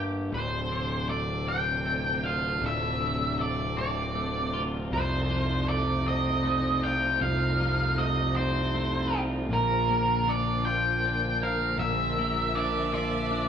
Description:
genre	post-rock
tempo	52 BPM (dotted quarters)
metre	6/8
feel	straight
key	D minor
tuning	A4 = 439 Hz
part	twelve-string electric guitar	arpeggios	0.0-13.5 s	D2 to Bb4	-32 LUFS	left 3 dB	none
part	fuzz picked electric bass	bass	0.0-13.5 s	D1 to C2	-30 LUFS	right 1 dB	overdrive
part	octave-fuzz lead guitar	melody	0.3-13.5 s	Bb4 to G5	-28 LUFS	right 1 dB	distortion
part	clear studio string section	sustained chords	0.3-13.5 s	C3 to E5	-37 LUFS	right 2 dB	none
room	wet large studio reverb, RT60 1.2 s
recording	band playing live in one room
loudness	-25 LUFS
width	side -8 dB against mid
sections	0.0-13.5 A section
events	none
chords	0.3 Dm7; 4.9 F7/C; 9.5 Bb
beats	| 0.33 1.48 | 2.62 3.77 | 4.92 6.07 | 7.21 8.36 | 9.51 10.65 | 11.80 12.95

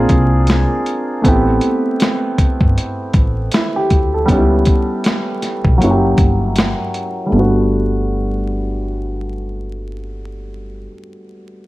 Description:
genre	lo-fi hip hop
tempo	79 BPM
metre	4/4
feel	swing 62% on 16ths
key	G major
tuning	A4 = 440 Hz
part	warm upright piano	accompaniment	0.0-11.7 s	F#3 to A4	-17 LUFS	equal	cassette tape, low-pass filter
part	upright bass	bass	0.0-10.9 s	F#1 to D2	-18 LUFS	equal	none
part	dusty soul sampler-style drum kit	drums	0.1-7.2 s	hi-hat, kick drum, snare drum	-15 LUFS	equal	none
room	light reverb, small room ambience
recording	vinyl crackle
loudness	-13 LUFS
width	side -18 dB against mid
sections	0.0-7.3 A section; 7.3-10.4 B section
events	filter sweep on upright piano 0.0-7.3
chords	0.0 Bb9; 1.2 Am9; 4.3 C#m7b5; 5.8 F#7b9; 7.3 Gmaj9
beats	0.48 | 1.24 2.00 2.76 3.52 | 4.28 5.04 5.80 6.56 | 7.32 8.08 8.84 9.60

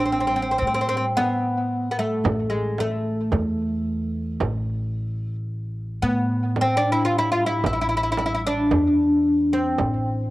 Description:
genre	Arabic maqam ensemble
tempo	111 BPM (eighths)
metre	10/8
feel	straight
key	A minor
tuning	A4 = 440 Hz
part	oud	melody	0.0-10.3 s	G#3 to F4	-21 LUFS	equal	cassette tape, analog delay
part	upright bass	bass	0.0-10.3 s	A1 to A2	-27 LUFS	equal	none
part	frame drum	percussion	1.2-10.0 s	none	-26 LUFS	right 4 dB	none
room	light reverb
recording	home recording on cassette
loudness	-20 LUFS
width	side -17 dB against mid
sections	0.0-10.3 A section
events	none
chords	none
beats	0.09 0.63 1.17 1.71 2.25 2.79 3.33 3.87 | 4.40 4.94 5.48 6.02 6.56 7.10 7.63 8.17 8.71 9.25 | 9.79

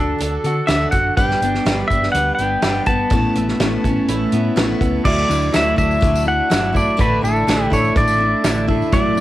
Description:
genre	folk rock and heartland rock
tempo	124 BPM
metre	4/4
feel	straight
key	D major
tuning	A4 = 440 Hz
part	pedal steel guitar	melody	0.0-9.2 s	A4 to A5	-19 LUFS	equal	cassette tape
part	picked steel-string acoustic guitar	accompaniment	0.0-9.2 s	A2 to B4	-23 LUFS	left 6 dB	cassette tape
part	clean electric guitar	riff	0.0-9.2 s	A2 to B4	-23 LUFS	right 6 dB	phaser, cassette tape
part	hollow-body short-scale fingered electric bass	bass	0.0-9.2 s	F#1 to D3	-23 LUFS	equal	none
part	natural country drum kit	drums	0.2-9.0 s	crash cymbal, hi-hat, kick drum, snare drum	-20 LUFS	equal	none
part	mellow tonewheel organ	sustained chords	1.2-9.2 s	C#4 to D6	-30 LUFS	equal	slow rotary speaker, cassette tape
part	tambourine	percussion	5.3-9.2 s	none	-36 LUFS	left 8 dB	none
room	studio ambience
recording	home recording on cassette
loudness	-15 LUFS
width	side -15 dB against mid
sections	0.0-5.1 A section; 5.1-9.2 B section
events	none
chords	0.0 D; 1.2 G; 3.1 Aadd9; 5.1 Dadd9; 7.0 Asus4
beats	0.21 0.69 | 1.18 1.66 2.15 2.63 | 3.12 3.60 4.09 4.57 | 5.06 5.54 6.03 6.51 | 7.00 7.48 7.96 8.45 | 8.93

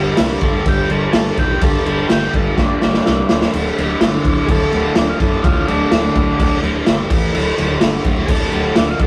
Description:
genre	garage rock duo or trio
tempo	126 BPM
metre	4/4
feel	straight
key	unclear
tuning	A4 = 437 Hz
part	crunchy overdriven guitar	riff	0.0-9.1 s	D2 to A3	-22 LUFS	equal	phaser
part	woody fretless electric bass	bass	0.0-9.1 s	D1 to C2	-25 LUFS	equal	overdrive
part	raw garage drum kit	drums	0.2-9.1 s	crash cymbal, kick drum, snare drum	-18 LUFS	equal	none
part	overdriven combo organ	melody	0.4-9.1 s	A3 to A4	-23 LUFS	equal	none
room	light reverb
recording	rough rehearsal-room recording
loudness	-16 LUFS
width	mono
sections	0.0-9.1 A section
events	drum fill 2.6-3.5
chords	0.0 G5; 3.3 D5; 6.9 G5; 7.1 A5; 7.3 D5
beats	0.19 0.67 1.14 | 1.62 2.10 2.58 3.05 | 3.53 4.01 4.48 4.96 | 5.43 5.91 6.39 6.86 | 7.34 7.82 8.29 8.77

